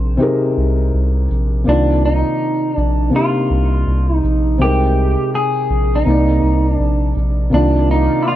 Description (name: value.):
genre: hip hop.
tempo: 82 BPM.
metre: 4/4.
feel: swing 65% on 16ths.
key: C minor.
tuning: A4 = 442 Hz.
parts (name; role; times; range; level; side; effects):
felt-muted upright piano; accompaniment; 0.0-8.4 s; C3 to G5; -18 LUFS; left 1 dB; cassette tape, low-pass filter.
soft dub sub bass; bass; 0.0-8.1 s; Bb1 to C2; -16 LUFS; equal; none.
electric guitar at the edge of break-up; melody; 1.7-8.4 s; D4 to Ab4; -18 LUFS; right 1 dB; low-pass filter.
lush unison pad; sustained chords; 7.8-8.4 s; Eb3 to D5; -27 LUFS; right 1 dB; chorus, phaser, low-pass filter.
room: light reverb.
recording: none.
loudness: -13 LUFS.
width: side -13 dB against mid.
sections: 0.0-7.5 A section.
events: none.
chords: 0.0 Bb13sus4; 1.7 Cm11; 4.6 Bb13sus4; 6.1 Cm9; 7.5 Cm11.